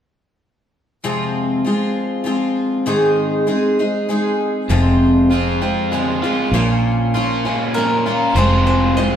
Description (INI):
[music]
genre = rock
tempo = 98 BPM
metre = 3/4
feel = straight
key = F minor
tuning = A4 = 439 Hz
[part]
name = picked twelve-string acoustic guitar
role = accompaniment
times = 1.0-9.2 s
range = F2 to Ab4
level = -17 LUFS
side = left 1 dB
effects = none
[part]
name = crunchy overdriven guitar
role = riff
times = 4.7-9.2 s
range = F2 to Ab4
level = -19 LUFS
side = right 2 dB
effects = none
[part]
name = fingered electric bass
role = bass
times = 4.7-9.2 s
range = F1 to Bb1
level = -19 LUFS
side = equal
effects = none
[part]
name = bowl-back mandolin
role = melody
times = 7.7-9.2 s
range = Bb4 to Eb5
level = -19 LUFS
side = left 1 dB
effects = none
[sound]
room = wet stone room reverb, RT60 1.3 s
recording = band playing live in one room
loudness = -15 LUFS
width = side -9 dB against mid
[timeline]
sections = 1.0-8.3 A section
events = none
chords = 1.0 Fm; 2.9 Ab; 4.7 Fm; 6.5 Bbm; 8.3 Fm